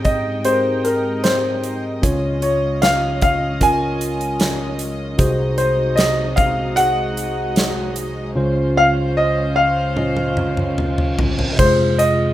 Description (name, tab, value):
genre	pop ballad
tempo	76 BPM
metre	4/4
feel	straight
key	unclear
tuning	A4 = 440 Hz
part	clear concert grand piano	melody	0.0-12.3 s	Bb4 to Ab5	-18 LUFS	left 1 dB	plate reverb
part	tine electric piano	accompaniment	0.0-12.3 s	C2 to Eb5	-20 LUFS	equal	none
part	warm studio string section	sustained chords	0.0-12.3 s	C3 to G5	-28 LUFS	right 1 dB	plate reverb
part	huge arena drum kit	drums	0.0-12.2 s	crash cymbal, hi-hat, kick drum, snare drum, toms	-21 LUFS	equal	none
part	reverse cymbal	sound effects	10.7-11.6 s	none	-29 LUFS	right 3 dB	none
room	moderate studio ambience, RT60 0.5 s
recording	rough home demo mix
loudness	-16 LUFS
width	side -13 dB against mid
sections	0.0-11.6 A section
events	drum fill 10.0-11.6; reverse cymbal 10.7-11.6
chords	0.0 Abmaj7; 2.0 Db; 5.2 Ab7/C; 8.4 Dbmaj7; 11.6 Fm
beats	0.45 1.24 | 2.03 2.83 3.62 4.40 | 5.19 5.98 6.77 7.57 | 8.36 9.16 9.97 10.78 | 11.59